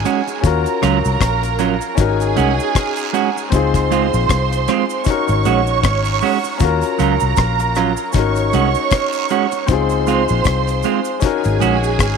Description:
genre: lovers rock reggae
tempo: 78 BPM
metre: 4/4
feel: swing 57% on 16ths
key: unclear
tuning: A4 = 440 Hz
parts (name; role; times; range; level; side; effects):
- warm symphonic violin section; second line; 0.0-12.2 s; Ab4 to Db6; -21 LUFS; right 11 dB; none
- clear concert grand piano; accompaniment; 0.0-12.2 s; C4 to Bb4; -21 LUFS; left 13 dB; none
- semi-hollow electric guitar; stabs; 0.0-11.8 s; Gb3 to Gb4; -21 LUFS; right 12 dB; spring reverb
- vintage muted fingered electric bass; bass; 0.0-12.2 s; Ab1 to Eb2; -19 LUFS; left 1 dB; none
- cabasa and guiro; percussion; 0.0-12.2 s; none; -33 LUFS; right 12 dB; tape echo
- deep reggae drum kit; drums; 0.1-12.2 s; hi-hat, kick drum, rim click; -19 LUFS; left 3 dB; tape echo
room: light reverb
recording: 1960s-style stereo with parts hard left and right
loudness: -14 LUFS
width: side -6 dB against mid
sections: 0.0-12.2 A section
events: none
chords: 0.4 Ebm9; 2.0 Ab7sus4; 3.5 Dbmaj7; 5.1 Ab7sus4; 6.6 Ebm9; 8.1 Ab7sus4; 9.7 Dbmaj7; 11.2 Ab7sus4

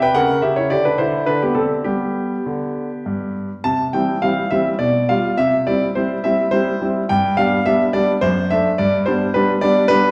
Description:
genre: classical-period piano sonatina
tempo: 105 BPM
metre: 3/4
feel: straight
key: G major, C major from 3.7 s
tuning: A4 = 440 Hz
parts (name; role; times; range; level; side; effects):
- clear concert grand piano; solo; 0.0-10.1 s; F#2 to A5; -18 LUFS; equal; none
room: wet recital hall reverb, RT60 1.4 s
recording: heard from further back in the room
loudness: -18 LUFS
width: mono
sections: 0.0-3.7 A section; 3.7-10.1 B section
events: none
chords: 0.1 C#dim7; 0.7 G5/D; 1.3 D5; 1.9 G; 3.7 C; 4.8 G7/B; 5.4 C; 7.1 G; 8.2 D7/F#; 8.8 G

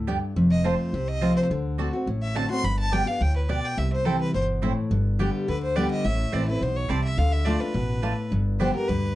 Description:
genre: bluegrass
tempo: 211 BPM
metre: 4/4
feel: straight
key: unclear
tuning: A4 = 440 Hz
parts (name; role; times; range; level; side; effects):
- picked steel-string acoustic guitar; accompaniment; 0.0-9.2 s; F2 to G4; -26 LUFS; left 1 dB; none
- upright bass; bass; 0.0-9.2 s; F1 to D2; -26 LUFS; equal; none
- mandolin; stabs; 0.1-8.7 s; A3 to A5; -30 LUFS; right 6 dB; none
- clear fiddle; melody; 0.5-9.2 s; A4 to C6; -29 LUFS; left 1 dB; none
room: light reverb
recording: dark, warm production, nothing above 10.8 kHz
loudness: -22 LUFS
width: side -15 dB against mid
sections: 0.0-4.9 A section; 4.9-9.2 B section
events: none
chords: 0.4 F; 1.5 D7; 2.6 G; 3.8 C; 4.9 G; 6.0 Am; 7.2 Dm; 8.3 G

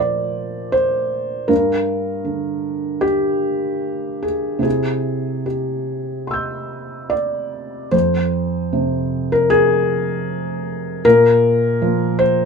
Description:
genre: neoclassical minimalist piano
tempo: 75 BPM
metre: 4/4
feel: uneven beats, rubato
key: F dorian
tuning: A4 = 441 Hz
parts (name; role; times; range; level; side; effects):
- felt-muted upright piano; solo; 0.0-12.5 s; F2 to G6; -17 LUFS; equal; none
room: light reverb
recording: minimal, uncompressed stereo recording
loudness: -17 LUFS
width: side -5 dB against mid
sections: 0.0-7.9 A section; 7.9-12.5 B section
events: none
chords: 0.0 Bb; 1.5 Gm; 4.6 C; 7.9 Fm; 11.0 Bb5

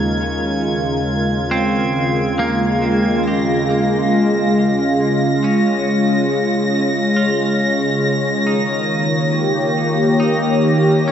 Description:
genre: ambient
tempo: 69 BPM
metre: 3/4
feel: straight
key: unclear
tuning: A4 = 440 Hz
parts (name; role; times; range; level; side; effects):
- warm analog pad; sustained chords; 0.0-11.1 s; Eb2 to Db5; -15 LUFS; equal; chorus
- analog drone; drone; 0.0-3.3 s; none; barely audible; none; none
- warm studio violin section; texture; 0.0-11.1 s; Ab6 to Bb6; -24 LUFS; equal; none
- clean electric guitar; arpeggios; 1.5-11.1 s; Bb3 to G4; -26 LUFS; equal; wide subtle chorus, tape echo
room: wet cathedral reverb, RT60 6.3 s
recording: cassette tape, nothing above 7.9 kHz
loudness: -14 LUFS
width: side -9 dB against mid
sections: 0.0-3.2 A section; 3.2-11.1 B section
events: fade-in on clean electric guitar 3.2-11.1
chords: 0.0 Db69/Eb; 3.2 Db; 8.5 Eb7

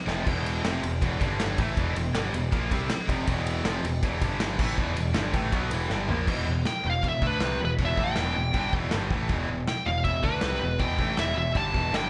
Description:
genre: heavy metal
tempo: 159 BPM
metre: 4/4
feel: straight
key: E phrygian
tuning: A4 = 440 Hz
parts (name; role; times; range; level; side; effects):
- scooped high-gain guitar; riff; 0.1-12.1 s; E2 to D4; -34 LUFS; equal; distortion
- tight distorted guitar; riff; 0.1-12.1 s; E2 to D4; -35 LUFS; equal; distortion
- growling picked electric bass; bass; 0.1-12.1 s; E1 to D2; -34 LUFS; equal; overdrive
- modern studio drum kit; drums; 0.1-12.0 s; china cymbal, crash cymbal, kick drum, ride cymbal, snare drum, toms; -32 LUFS; equal; none
- high-gain lead guitar; melody; 6.7-12.1 s; B4 to A5; -31 LUFS; equal; distortion
room: moderate large studio reverb, RT60 1.3 s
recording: band playing live in one room, nothing above 10.9 kHz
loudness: -27 LUFS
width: mono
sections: 0.0-6.3 A section; 6.3-12.1 B section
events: drum fill 0.1, 5.9-6.3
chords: 0.0 E5; 1.2 G5; 1.6 Em; 4.2 G5; 4.6 Em

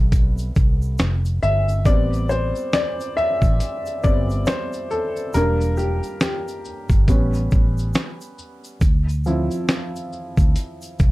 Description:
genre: lo-fi hip hop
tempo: 69 BPM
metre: 4/4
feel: swing 60% on 16ths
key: A minor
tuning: A4 = 441 Hz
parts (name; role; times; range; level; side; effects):
- warm upright piano; accompaniment; 0.0-11.1 s; C3 to E5; -24 LUFS; left 1 dB; cassette tape, low-pass filter
- vintage muted fingered electric bass; bass; 0.0-11.1 s; E1 to D2; -21 LUFS; equal; none
- dusty soul sampler-style drum kit; drums; 0.1-11.1 s; hi-hat, kick drum, shaker, snare drum; -19 LUFS; equal; none
- tube shaker; percussion; 0.1-11.1 s; none; -48 LUFS; right 5 dB; none
room: light reverb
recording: dark, warm production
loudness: -18 LUFS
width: side -19 dB against mid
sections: 0.0-1.9 A section; 1.9-11.1 A section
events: upright piano solo 0.0-1.9, 1.9-11.1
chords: 0.0 Am9; 5.3 Em7b5; 7.1 A7; 8.8 Dm7

